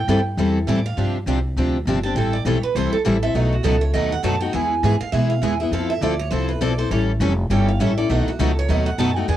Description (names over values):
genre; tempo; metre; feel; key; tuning
acoustic string swing (jazz manouche); 202 BPM; 4/4; swing 60% on 8ths; A minor; A4 = 440 Hz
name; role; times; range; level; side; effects
picked steel-string acoustic guitar; second line; 0.0-9.4 s; F#4 to A5; -25 LUFS; right 6 dB; cassette tape, plate reverb
upright bass; bass; 0.0-9.4 s; F1 to B2; -22 LUFS; equal; none
picked steel-string acoustic guitar; accompaniment; 0.1-9.4 s; B2 to A4; -23 LUFS; left 6 dB; cassette tape, plate reverb
picked steel-string acoustic guitar; accompaniment; 0.1-9.4 s; B2 to B4; -26 LUFS; right 7 dB; cassette tape, plate reverb
room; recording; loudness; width
moderate small room reverb, RT60 0.5 s; home recording on cassette; -18 LUFS; side -12 dB against mid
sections
1.0-9.4 A section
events
steel-string acoustic guitar solo 0.0-9.4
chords
0.0 Am7; 1.0 G7sus4; 2.2 Am7; 3.3 B7; 4.5 E; 5.7 Fmaj7; 6.9 A7; 8.1 B7